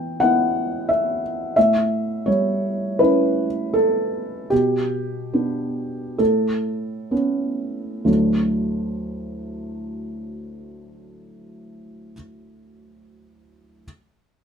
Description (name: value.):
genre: neoclassical minimalist piano.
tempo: 61-88 BPM.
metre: 4/4.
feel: rubato.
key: D major.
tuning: A4 = 441 Hz.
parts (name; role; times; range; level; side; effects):
felt-muted upright piano; solo; 0.0-13.9 s; D2 to G5; -20 LUFS; equal; none.
room: light reverb.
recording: minimal, uncompressed stereo recording.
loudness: -19 LUFS.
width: side -6 dB against mid.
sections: 0.0-8.1 A section; 8.1-11.6 B section.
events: slowing down 0.2-8.1.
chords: 0.0 Emadd9; 1.6 A7; 4.5 G/B; 6.2 Aadd9; 8.1 D.